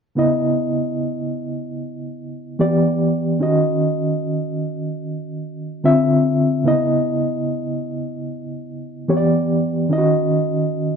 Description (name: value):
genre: R&B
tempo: 74 BPM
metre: 4/4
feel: swing 62% on 16ths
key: unclear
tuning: A4 = 440 Hz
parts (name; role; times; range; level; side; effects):
- reed electric piano; solo; 0.2-11.0 s; C#3 to E5; -18 LUFS; equal; tremolo
room: moderate large studio reverb, RT60 1.2 s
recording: band playing live in one room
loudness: -17 LUFS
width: side -6 dB against mid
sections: 0.2-11.0 A section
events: none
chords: 0.2 C#m9; 2.6 Em7; 3.4 D#m7; 5.8 Dm9; 6.6 C#m9; 9.1 Em7; 9.9 D#m7